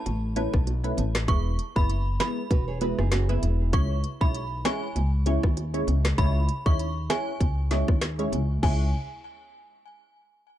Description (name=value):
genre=dancehall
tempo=98 BPM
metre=4/4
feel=swing 56% on 16ths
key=C# minor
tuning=A4 = 440 Hz
part: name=upright bass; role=bass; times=0.1-8.9 s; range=E1 to D#2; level=-26 LUFS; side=equal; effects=none
part: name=island pop drum kit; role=drums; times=0.1-8.8 s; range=crash cymbal, hi-hat, kick drum, rim click, snare drum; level=-25 LUFS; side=equal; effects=none
part: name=bongos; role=percussion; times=0.1-8.9 s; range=none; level=-36 LUFS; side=right 5 dB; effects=none
part: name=punchy chord stab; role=accompaniment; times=0.4-8.9 s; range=G#3 to C#5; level=-32 LUFS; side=equal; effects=chorus, phaser, sidechain pumping
part: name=synth chime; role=melody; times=1.3-8.9 s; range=G#5 to C#6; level=-34 LUFS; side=right 2 dB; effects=ensemble chorus, digital delay
part: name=nylon-string guitar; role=arpeggios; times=2.5-3.7 s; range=B3 to C#5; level=-34 LUFS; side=right 5 dB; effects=digital delay
room=small room ambience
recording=dark, warm production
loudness=-23 LUFS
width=side -12 dB against mid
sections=0.0-8.6 A section; 8.6-10.6 B section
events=none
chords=0.0 Aadd9; 1.3 E; 3.7 C#m